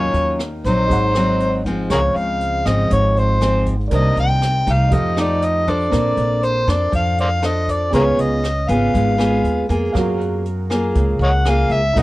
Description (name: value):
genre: bossa nova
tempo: 119 BPM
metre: 4/4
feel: straight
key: unclear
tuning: A4 = 440 Hz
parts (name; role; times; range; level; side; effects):
- overdriven harmonica; melody; 0.0-12.0 s; Ab4 to G5; -19 LUFS; left 1 dB; none
- nylon-string guitar; accompaniment; 0.0-12.0 s; Ab2 to C5; -21 LUFS; equal; none
- warm concert grand piano; accompaniment; 0.0-12.0 s; C4 to Gb5; -29 LUFS; right 4 dB; none
- upright bass; bass; 0.0-12.0 s; Ab1 to F#2; -20 LUFS; equal; none
- jazz brush drum kit; drums; 0.1-12.0 s; hi-hat, kick drum, rim click; -26 LUFS; equal; none
room: little or no reverb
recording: worn, warbling old tape, cassette tape, warbly pitch drift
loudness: -15 LUFS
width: side -18 dB against mid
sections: 0.0-9.9 A section; 9.9-12.0 B section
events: harmonica solo 9.9-12.0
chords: 0.0 Ebm9; 0.9 Ab7; 1.9 Dbmaj7; 3.9 Cm9; 4.9 F9; 5.9 Bbmaj9; 7.9 Db7; 9.9 F#maj9